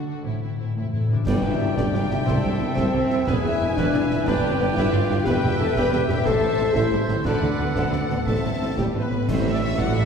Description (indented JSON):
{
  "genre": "cinematic, heroic adventure film score",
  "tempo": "120 BPM (dotted quarters)",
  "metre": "6/8",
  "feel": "straight",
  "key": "unclear",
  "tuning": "A4 = 440 Hz",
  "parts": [
    { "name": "rich symphonic violin section", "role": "melody", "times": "0.0-10.1 s", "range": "E4 to A5", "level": "-35 LUFS", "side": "left 2 dB", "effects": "none" },
    { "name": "warm symphonic violin section", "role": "second line", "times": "0.0-10.1 s", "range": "C4 to B5", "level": "-35 LUFS", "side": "left 4 dB", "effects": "none" },
    { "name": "rich symphonic viola section", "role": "accompaniment", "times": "0.0-10.1 s", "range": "A3 to E5", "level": "-32 LUFS", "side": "right 2 dB", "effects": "none" },
    { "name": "concert harp", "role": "arpeggios", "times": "0.0-10.1 s", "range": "E2 to D5", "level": "-32 LUFS", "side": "left 4 dB", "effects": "none" },
    { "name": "warm symphonic cello section", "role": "bass", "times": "0.0-10.1 s", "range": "C2 to D3", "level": "-29 LUFS", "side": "right 2 dB", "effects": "none" },
    { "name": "rich symphonic double bass section", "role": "bass", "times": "0.2-10.1 s", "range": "E1 to D2", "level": "-28 LUFS", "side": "right 3 dB", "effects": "none" },
    { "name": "timpani", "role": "percussion", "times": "0.3-4.7 s", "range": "G2 to C3", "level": "-29 LUFS", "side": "left 1 dB", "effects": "none" },
    { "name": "bright clarinet", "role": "second line", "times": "1.3-10.0 s", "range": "A4 to E5", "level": "-34 LUFS", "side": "left 1 dB", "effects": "none" },
    { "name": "hollow flute section", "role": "second line", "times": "1.3-10.1 s", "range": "G4 to G#5", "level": "-34 LUFS", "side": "left 1 dB", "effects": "none" },
    { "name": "warm oboe", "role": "second line", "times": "1.3-10.0 s", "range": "G4 to E5", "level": "-34 LUFS", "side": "right 2 dB", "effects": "none" },
    { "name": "mellow French horn section", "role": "sustained chords", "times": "1.3-10.1 s", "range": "G3 to B4", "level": "-25 LUFS", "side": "left 2 dB", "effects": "none" },
    { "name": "clear tuba", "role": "bass", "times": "1.3-10.1 s", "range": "E1 to D2", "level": "-30 LUFS", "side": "right 2 dB", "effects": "none" },
    { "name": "concert snare drum, clash cymbals and concert bass drum", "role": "drums", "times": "1.3-9.9 s", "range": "none", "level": "-29 LUFS", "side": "equal", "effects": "none" },
    { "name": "tam-tam", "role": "percussion", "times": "1.3-2.6 s", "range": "none", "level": "-34 LUFS", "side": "left 2 dB", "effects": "none" }
  ],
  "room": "wet concert hall reverb, RT60 1.9 s",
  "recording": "heard from further back in the room",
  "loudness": "-20 LUFS",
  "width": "side -6 dB against mid",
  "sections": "0.0-1.3 A section; 1.3-9.3 B section",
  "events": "timpani fill 0.3-1.3; band accent 1.3-1.6",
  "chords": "0.3 Am; 1.3 G; 2.3 C; 3.3 E; 4.3 G; 5.3 Em; 6.3 Am; 7.3 D; 8.3 Am"
}